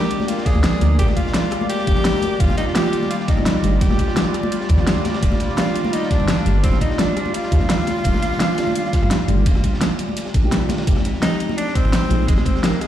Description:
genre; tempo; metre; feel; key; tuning
liquid drum and bass; 170 BPM; 4/4; straight; unclear; A4 = 440 Hz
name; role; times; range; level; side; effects
warm tenor saxophone; melody; 0.0-12.9 s; Ab3 to Ab4; -25 LUFS; left 1 dB; ping-pong delay
mellow FM electric piano; accompaniment; 0.0-12.7 s; Eb3 to D5; -24 LUFS; right 1 dB; chorus, phaser, ping-pong delay
warm analog pad; sustained chords; 0.0-10.8 s; G3 to D5; -27 LUFS; equal; chorus, sidechain pumping
crunchy breakbeat drum kit; drums; 0.0-12.9 s; ride cymbal, snare drum; -31 LUFS; left 1 dB; high-pass filter on cymbals, high-pass filter on snare, high-pass filter on room
pop drum kit; drums; 0.1-12.9 s; hi-hat, rim click, snare drum; -23 LUFS; right 1 dB; overdrive
congas; percussion; 0.2-12.7 s; none; -28 LUFS; left 3 dB; none
electronic kick drum; drums; 0.5-12.5 s; none; -18 LUFS; equal; overdrive
dark detuned saw bass; bass; 0.6-12.4 s; Eb1 to Eb2; -19 LUFS; equal; none
room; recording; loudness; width
light reverb, small room ambience; played on a big sound system in a bare room, large studio reverb; -16 LUFS; side -11 dB against mid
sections
0.0-10.9 A section; 10.9-12.9 A section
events
drop 0.0-10.9, 10.9-12.9; kick drops out 10.5-10.9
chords
0.0 Bb7; 2.4 Ebmaj9; 10.9 Fm9

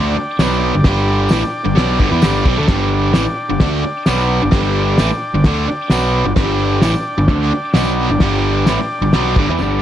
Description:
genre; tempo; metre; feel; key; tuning
garage rock duo or trio; 130 BPM; 4/4; straight; unclear; A4 = 440 Hz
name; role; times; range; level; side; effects
overdriven combo organ; sustained chords; 0.0-9.8 s; D4 to G5; -22 LUFS; left 1 dB; none
biting overdriven guitar; riff; 0.0-9.8 s; G2 to D4; -16 LUFS; right 1 dB; none
fuzz fingered electric bass; bass; 0.0-9.8 s; G1 to E2; -20 LUFS; equal; overdrive
cloth-damped thuddy drum kit; drums; 0.4-9.7 s; crash cymbal, hi-hat, kick drum, snare drum; -16 LUFS; equal; none
tambourine; percussion; 0.4-9.7 s; none; -36 LUFS; left 3 dB; none
room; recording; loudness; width
moderate studio reverb, RT60 0.7 s; cassette tape; -13 LUFS; side -11 dB against mid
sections
0.0-9.8 A section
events
drum fill 9.6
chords
0.0 G5

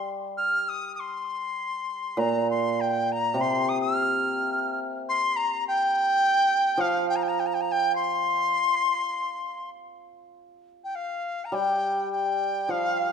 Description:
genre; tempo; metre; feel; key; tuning
chinese traditional; 103 BPM; 4/4; rubato; C yu mode; A4 = 440 Hz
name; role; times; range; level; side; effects
bright reedy dizi; melody; 0.0-13.1 s; F5 to F6; -25 LUFS; left 1 dB; none
hammered dulcimer; accompaniment; 0.0-13.1 s; Bb2 to G3; -29 LUFS; right 2 dB; none
room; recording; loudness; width
moderate scoring stage reverb, RT60 1.5 s; minimal, uncompressed stereo recording; -23 LUFS; side -6 dB against mid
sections
0.0-10.3 A section; 10.3-13.1 B section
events
none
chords
none

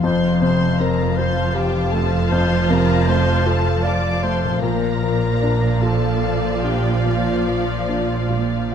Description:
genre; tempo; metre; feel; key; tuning
cinematic, emotional film score for orchestra; 47-53 BPM (dotted quarters); 6/8; rubato; unclear; A4 = 439 Hz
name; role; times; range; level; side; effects
warm studio violin section; melody; 0.0-8.3 s; F5 to D6; -30 LUFS; left 3 dB; none
mellow clarinet; second line; 0.0-8.3 s; F4 to D5; -24 LUFS; left 2 dB; none
warm studio violin section; second line; 0.0-8.7 s; D5 to A5; -28 LUFS; left 4 dB; none
felt-muted upright piano; accompaniment; 0.0-8.7 s; F2 to F5; -25 LUFS; left 3 dB; none
rich studio viola section; accompaniment; 0.0-8.7 s; F3 to F4; -27 LUFS; right 1 dB; none
concert harp; arpeggios; 0.0-8.5 s; Bb2 to F5; -24 LUFS; left 5 dB; none
warm studio cello section; bass; 0.0-8.7 s; F2 to C3; -23 LUFS; right 4 dB; none
warm studio double bass section; bass; 0.0-8.7 s; F1 to Bb1; -24 LUFS; right 4 dB; none
room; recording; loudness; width
wet concert hall reverb, RT60 1.9 s; dark, warm production; -16 LUFS; side -8 dB against mid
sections
0.0-8.7 A section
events
none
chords
0.0 F; 4.6 Bb

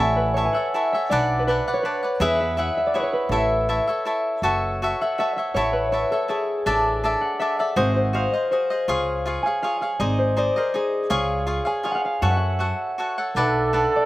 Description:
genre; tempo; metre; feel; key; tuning
mexican folk, mariachi; 162 BPM; 3/4; straight; A major, F# minor from 4.4 s; A4 = 440 Hz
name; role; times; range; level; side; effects
concert harp; melody; 0.0-14.1 s; G#4 to G#5; -24 LUFS; equal; none
cavaquinho; accompaniment; 0.0-14.1 s; D4 to F#5; -23 LUFS; equal; slapback echo
upright bass; bass; 0.0-13.8 s; F#1 to F#2; -25 LUFS; equal; none
mellow trumpet; second line; 13.4-14.1 s; A4; -21 LUFS; right 3 dB; none
room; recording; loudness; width
little or no reverb; recorded outdoors, with no room sound; -20 LUFS; side -17 dB against mid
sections
0.0-4.4 A section; 4.4-13.4 B section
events
none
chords
0.0 A; 1.1 Bm; 2.2 E; 3.3 A; 4.4 F#m7; 5.6 A; 6.7 Dsus2/A; 7.8 G#7; 8.9 C#; 10.0 G#; 11.1 C#; 12.2 F#m; 13.4 Bm

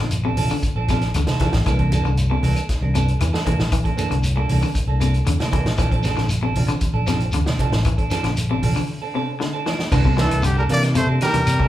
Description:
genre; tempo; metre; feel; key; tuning
afrobeat; 116 BPM; 4/4; straight; C mixolydian; A4 = 436 Hz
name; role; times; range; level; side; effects
twangy electric guitar; arpeggios; 0.0-11.7 s; Bb2 to E3; -27 LUFS; left 4 dB; none
semi-hollow electric guitar; stabs; 0.0-11.7 s; E3 to A4; -26 LUFS; right 4 dB; none
fingered electric bass; bass; 0.0-11.7 s; A1 to C3; -21 LUFS; equal; none
vintage drum kit; drums; 0.1-11.7 s; crash cymbal, hi-hat, kick drum, snare drum; -24 LUFS; equal; none
shekere; percussion; 0.1-11.6 s; none; -29 LUFS; left 1 dB; none
congas; percussion; 0.4-11.5 s; none; -26 LUFS; right 2 dB; none
claves; percussion; 0.5-11.6 s; none; -39 LUFS; left 7 dB; none
clear trumpet; melody; 10.2-11.7 s; G4 to D5; -22 LUFS; left 1 dB; none
bright trombone; second line; 10.2-11.7 s; D3 to Bb3; -27 LUFS; right 2 dB; none
room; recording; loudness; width
wet large studio reverb, RT60 0.8 s; band playing live in one room; -17 LUFS; side -13 dB against mid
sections
0.0-9.9 A section; 9.9-11.7 B section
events
break 8.9-9.9; drum fill 9.4-9.9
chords
0.0 Bbmaj9; 1.7 C13; 5.8 Bbmaj9; 9.9 C13

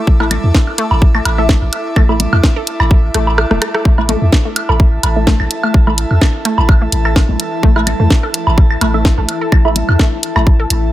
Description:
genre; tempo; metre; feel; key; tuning
minimal techno; 127 BPM; 4/4; swing 54% on 16ths; unclear; A4 = 442 Hz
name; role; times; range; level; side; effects
airy breathy pad; texture; 0.0-10.9 s; E4 to D6; -23 LUFS; right 1 dB; chorus, sidechain pumping
punchy sub bass; bass; 0.1-10.9 s; E1 to E2; -15 LUFS; equal; sidechain pumping
electronic kick drum; drums; 0.1-10.6 s; none; -10 LUFS; equal; none
resonant blip pluck; riff; 0.2-10.6 s; A3 to A4; -22 LUFS; left 1 dB; chorus, phaser, cassette tape, sidechain pumping, dub echo
filtered dub chord stab; stabs; 0.2-9.7 s; A3 to E5; -22 LUFS; right 1 dB; phaser, dub echo
woodblock and congas; percussion; 0.2-10.4 s; none; -19 LUFS; right 2 dB; dub echo
garage drum kit; drums; 0.3-10.8 s; hi-hat, rim click, snare drum; -17 LUFS; equal; none
swarming drone; texture; 5.5-10.9 s; E3 to E4; -26 LUFS; left 5 dB; built-in reverb, sidechain pumping
room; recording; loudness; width
digital ambience; none; -10 LUFS; side -14 dB against mid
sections
0.0-10.9 A section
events
drum fill 3.1-3.9; kick drops out 3.4-3.9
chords
0.0 A5

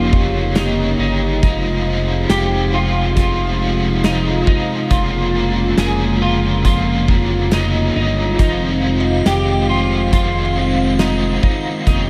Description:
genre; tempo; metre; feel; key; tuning
dream pop; 69 BPM; 4/4; straight; F minor; A4 = 444 Hz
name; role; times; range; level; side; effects
crunchy overdriven guitar; accompaniment; 0.0-12.1 s; F3 to Db5; -26 LUFS; equal; tremolo, analog chorus
warm analog pad; sustained chords; 0.0-12.1 s; C3 to G4; -22 LUFS; equal; chorus
clean electric guitar; arpeggios; 0.0-12.1 s; Eb4 to Ab4; -25 LUFS; equal; ensemble chorus, digital delay
fat analog bass; bass; 0.0-12.1 s; F1 to G1; -22 LUFS; equal; none
loose indie drum kit; drums; 0.1-12.1 s; hi-hat, kick drum, snare drum; -19 LUFS; equal; none
shimmering bell with halo; texture; 9.0-12.1 s; Eb5 to F5; -35 LUFS; equal; ensemble chorus, phaser, digital delay
room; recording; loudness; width
moderate concert hall reverb, RT60 2.3 s; none; -17 LUFS; mono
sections
0.0-12.1 A section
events
none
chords
0.0 Eb7/F; 1.4 Fm7; 4.9 Bbm7/F; 8.4 Fm7

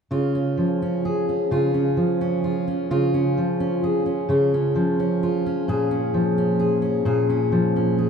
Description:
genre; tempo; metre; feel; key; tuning
folk; 43 BPM (dotted quarters); 6/8; straight; Db major; A4 = 441 Hz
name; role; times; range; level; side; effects
fingerpicked steel-string acoustic guitar; accompaniment; 0.1-8.1 s; Bb2 to Ab4; -19 LUFS; equal; none
room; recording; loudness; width
wet cathedral reverb, RT60 6.9 s; in a vast, echoing space; -19 LUFS; side -6 dB against mid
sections
0.1-8.1 A section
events
none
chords
0.1 Db; 5.7 Bbm7

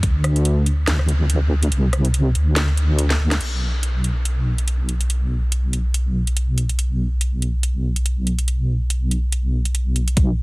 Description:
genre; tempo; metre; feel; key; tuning
deep dubstep; 142 BPM; 4/4; swing 56% on 16ths, half-time; B phrygian; A4 = 439 Hz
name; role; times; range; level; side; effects
deep soft wobble bass; bass; 0.0-10.4 s; B1 to D2; -18 LUFS; equal; chorus
electronic kick drum; drums; 0.0-0.1, 10.2-10.3 s; none; -18 LUFS; equal; none
garage drum kit; drums; 0.0-10.3 s; crash cymbal, hi-hat, rim click, snare drum; -25 LUFS; equal; none
room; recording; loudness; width
little or no reverb; heavily compressed radio sound; -18 LUFS; side -25 dB against mid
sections
0.0-3.4 A section; 3.4-10.2 B section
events
drum fill 3.1-3.4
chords
none

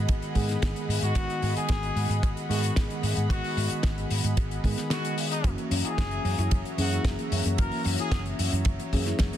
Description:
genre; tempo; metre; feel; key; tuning
nu-disco, nu disco; 112 BPM; 4/4; straight; G# minor; A4 = 440 Hz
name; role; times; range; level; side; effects
mellow tine electric piano; accompaniment; 0.0-9.4 s; D#3 to G#4; -32 LUFS; right 1 dB; slow stereo tremolo, analog delay
lush unison pad; sustained chords; 0.0-9.4 s; F#4 to B5; -37 LUFS; equal; chorus, sidechain pumping
hollow-body short-scale fingered electric bass; bass; 0.0-9.3 s; F#1 to G#2; -29 LUFS; equal; none
damped 70s drum kit; drums; 0.1-9.4 s; hi-hat, ride cymbal, snare drum; -33 LUFS; left 2 dB; small room ambience
kick drum; drums; 0.1-9.3 s; none; -26 LUFS; equal; small room ambience, soft clipping on snare
bright trumpet section; melody; 1.0-8.2 s; D#4 to A#4; -34 LUFS; left 4 dB; tape echo
soft round pluck; arpeggios; 5.4-9.4 s; F#3 to E4; -38 LUFS; left 3 dB; chorus, vintage 12-bit sampler grit, sidechain pumping, tape echo
room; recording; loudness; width
light reverb, small room ambience; dense, heavily limited modern master; -24 LUFS; side -11 dB against mid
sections
0.0-9.4 A section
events
none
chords
0.0 G#m7; 5.4 F#7

